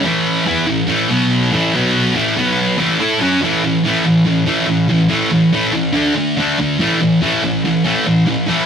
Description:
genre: rock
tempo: 142 BPM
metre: 4/4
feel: straight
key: unclear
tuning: A4 = 440 Hz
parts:
  - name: thick fuzz guitar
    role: solo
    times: 0.0-8.7 s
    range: A2 to A4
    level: -13 LUFS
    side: equal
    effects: distortion
room: moderate studio reverb, RT60 0.6 s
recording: rough rehearsal-room recording, warm saturation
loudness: -13 LUFS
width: side -7 dB against mid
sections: 0.0-3.4 A section; 3.4-8.7 B section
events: none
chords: 0.0 A5; 1.1 B5; 1.5 A5; 1.7 B5; 2.2 A5; 2.4 B5; 2.8 A; 3.4 A5; 5.9 D5; 6.8 A5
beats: | 0.04 0.47 0.89 1.31 | 1.73 2.15 2.57 3.00 | 3.42 3.84 4.26 4.68 | 5.11 5.53 5.95 6.37 | 6.79 7.21 7.64 8.06 | 8.48

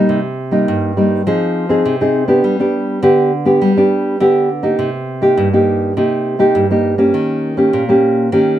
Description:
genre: samba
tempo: 102 BPM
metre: 4/4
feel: straight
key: C minor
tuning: A4 = 440 Hz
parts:
  - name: nylon-string guitar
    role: solo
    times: 0.0-8.6 s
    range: G2 to Ab4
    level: -12 LUFS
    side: equal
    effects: none
room: light reverb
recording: none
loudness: -12 LUFS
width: side -12 dB against mid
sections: 0.0-4.8 A section; 4.8-8.6 B section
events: none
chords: 0.1 Cm7; 1.3 Fm7; 2.4 G; 4.8 Cm7; 7.1 Eb7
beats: | 0.09 0.68 1.26 1.85 | 2.44 3.03 3.62 4.20 | 4.79 5.38 5.97 6.55 | 7.14 7.73 8.32

